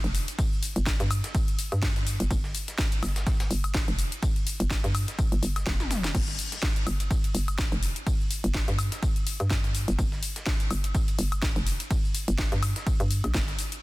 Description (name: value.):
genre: bass house.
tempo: 125 BPM.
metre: 4/4.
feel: swing 56% on 16ths.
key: unclear.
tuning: A4 = 441 Hz.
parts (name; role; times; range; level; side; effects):
hollow knocking FM bass; bass; 0.0-13.6 s; F1 to G2; -28 LUFS; equal; tube saturation, sidechain pumping.
house drum kit; drums; 0.0-13.8 s; crash cymbal, hi-hat, ride cymbal, shaker, snare drum, toms, woodblock; -32 LUFS; left 1 dB; overdrive.
dusty soul sampler-style drum kit; drums; 0.1-13.7 s; hi-hat, snare drum, tambourine; -42 LUFS; left 1 dB; overdrive, high-pass filter on snare, high-pass filter on perc, high-pass filter on hats.
electronic kick drum; drums; 0.4-13.5 s; none; -27 LUFS; equal; none.
room: little or no reverb.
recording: dense, heavily limited modern master.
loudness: -24 LUFS.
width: side -19 dB against mid.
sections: 0.0-13.8 A section.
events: drum fill 5.7-6.1.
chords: none.